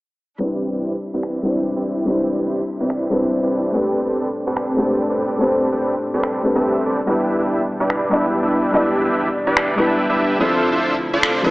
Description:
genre	future bass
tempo	144 BPM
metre	4/4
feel	half-time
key	unclear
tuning	A4 = 440 Hz
part	felt-muted upright piano	accompaniment	0.4-11.5 s	F3 to D5	-20 LUFS	left 1 dB	tape echo
part	clear studio string section	sustained chords	0.4-11.5 s	D2 to E4	-29 LUFS	right 1 dB	none
part	dense compressed supersaw	riff	0.4-11.5 s	C4 to E5	-20 LUFS	right 1 dB	low-pass filter
part	electronic finger snaps	drums	1.2-11.3 s	none	-21 LUFS	equal	overdrive
room	moderate lush hall reverb, RT60 2.1 s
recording	low-pass filter, small speaker sound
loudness	-17 LUFS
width	side -20 dB against mid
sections	0.4-11.5 A section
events	filter sweep on supersaw synth 0.4-11.5; filter sweep 0.4-11.5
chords	0.4 Cmaj9; 3.7 Am11; 7.1 Em7; 10.4 Dm9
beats	| 0.40 0.82 1.23 1.65 | 2.07 2.48 2.90 3.32 | 3.73 4.15 4.57 4.98 | 5.40 5.82 6.23 6.65 | 7.07 7.48 7.90 8.32 | 8.73 9.15 9.57 9.98 | 10.40 10.82 11.23

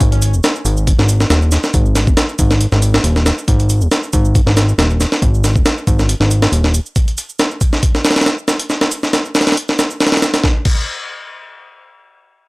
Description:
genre	breakbeat, breaks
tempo	138 BPM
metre	4/4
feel	swing 54% on 16ths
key	unclear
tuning	A4 = 439 Hz
part	fat analog bass	bass	0.0-6.8 s	D#1 to G#1	-13 LUFS	equal	none
part	breakbeat sampler-style drum kit	drums	0.0-10.8 s	crash cymbal, hi-hat, kick drum, snare drum	-14 LUFS	equal	small room ambience
part	shaker	drums	0.0-10.4 s	none	-28 LUFS	right 4 dB	small room ambience
room	little or no reverb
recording	dry, gritty hardware recording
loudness	-12 LUFS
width	side -25 dB against mid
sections	0.0-10.4 A section; 10.4-12.5 B section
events	none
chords	none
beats	| 0.00 0.43 0.87 1.30 | 1.74 2.17 2.61 3.04 | 3.48 3.91 4.35 4.78 | 5.22 5.65 6.09 6.52 | 6.96 7.39 7.83 8.26 | 8.69 9.13 9.56 10.00 | 10.43

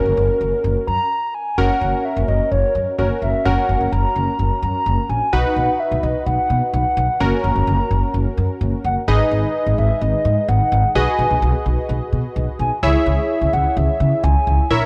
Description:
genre	synth-pop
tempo	128 BPM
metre	4/4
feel	straight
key	unclear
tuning	A4 = 440 Hz
part	hollow clarinet-like synth lead	melody	0.0-14.9 s	A#4 to A#5	-23 LUFS	equal	chorus
part	warm analog keys	accompaniment	0.0-14.9 s	C#4 to E5	-26 LUFS	equal	chorus
part	upright bass	bass	0.0-14.8 s	F#1 to C#3	-21 LUFS	equal	none
room	light reverb, small room ambience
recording	dry, gritty hardware recording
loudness	-18 LUFS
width	mono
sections	0.0-1.6 A section; 1.6-9.1 B section; 9.1-14.9 C section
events	stop 1.1-1.6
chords	0.0 F#; 5.3 B; 7.2 F#; 9.1 G#m; 11.0 B6; 12.8 C#m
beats	0.17 0.64 1.11 | 1.58 2.05 2.52 2.98 | 3.45 3.92 4.39 4.86 | 5.33 5.80 6.27 6.74 | 7.20 7.67 8.14 8.61 | 9.08 9.55 10.02 10.48 | 10.95 11.42 11.89 12.36 | 12.83 13.30 13.77 14.23 | 14.70

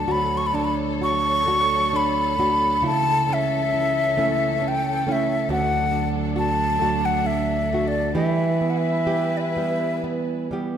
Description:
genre	celtic folk, Celtic slow air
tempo	67 BPM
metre	3/4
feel	uneven beats, rubato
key	unclear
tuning	A4 = 440 Hz
part	wooden flute	melody	0.0-10.0 s	D5 to C#6	-22 LUFS	left 2 dB	none
part	nylon-string guitar	accompaniment	0.0-10.8 s	D2 to G4	-24 LUFS	right 3 dB	none
part	warm studio string section	sustained chords	0.0-10.8 s	C#2 to C#5	-30 LUFS	equal	none
room	moderate scoring stage reverb, RT60 1.5 s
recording	minimal, uncompressed stereo recording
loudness	-19 LUFS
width	side -9 dB against mid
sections	0.0-10.8 A section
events	none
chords	0.0 D; 2.8 A/C#; 5.5 D; 8.2 Em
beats	| 0.09 1.02 1.95 | 2.85 3.74 4.63 | 5.51 6.38 7.26 | 8.15 9.06 10.02

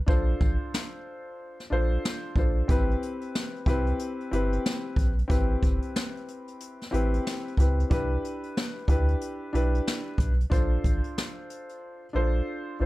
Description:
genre	hip hop, boom-bap hip-hop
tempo	92 BPM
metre	4/4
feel	swing 62% on 16ths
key	A minor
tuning	A4 = 439 Hz
part	dark concert grand piano	accompaniment	0.1-12.9 s	C4 to C5	-31 LUFS	left 1 dB	none
part	sub bass with octave	bass	0.1-12.9 s	G1 to D2	-26 LUFS	equal	none
part	jazz brush drum kit	drums	0.1-11.8 s	hi-hat, kick drum, snare drum	-26 LUFS	equal	none
room	little or no reverb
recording	dark, warm production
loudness	-24 LUFS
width	side -18 dB against mid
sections	0.0-12.9 A section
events	break 0.0-2.7; drum fill 11.8-12.9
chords	0.1 Bbmaj7; 2.7 Am7; 7.9 Cmaj7; 10.5 Bbmaj7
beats	| 0.08 0.73 1.38 2.04 | 2.69 3.34 3.99 4.64 | 5.30 5.95 6.60 7.25 | 7.91 8.56 9.21 9.86 | 10.51 11.17 11.82 12.47

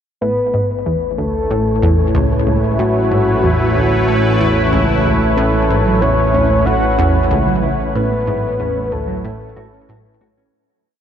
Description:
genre	ambient, sequencer-driven space music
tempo	93 BPM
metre	4/4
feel	straight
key	A major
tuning	A4 = 440 Hz
part	soft octave-layered synth lead	melody	0.2-10.2 s	F#4 to F#5	-19 LUFS	left 1 dB	chorus, ping-pong delay
part	sweeping resonant pad	sustained chords	0.2-10.5 s	A3 to C#5	-20 LUFS	left 1 dB	chorus
part	analog pluck	riff	0.2-10.4 s	C#2 to A2	-19 LUFS	equal	chorus, cassette tape, ping-pong delay
part	fat analog bass	bass	0.2-10.5 s	A1	-20 LUFS	equal	none
part	wind-like tuned noise texture	texture	1.1-10.6 s	C#4 to C#5	-25 LUFS	right 2 dB	built-in reverb, ensemble chorus
part	mellow electric guitar	arpeggios	5.4-10.5 s	F#3 to F#4	-23 LUFS	moving between equal and right 7 dB	auto-pan, ping-pong delay
room	moderate huge ambient reverb, RT60 8.3 s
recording	dreamy mix soaked in reverb, cassette tape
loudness	-13 LUFS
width	side -9 dB against mid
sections	0.2-10.5 A section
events	fade-out 7.1-10.5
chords	0.2 A6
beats	| 0.21 0.86 1.50 2.15 | 2.79 3.44 4.08 4.73 | 5.37 6.02 6.66 7.31 | 7.95 8.60 9.24 9.89

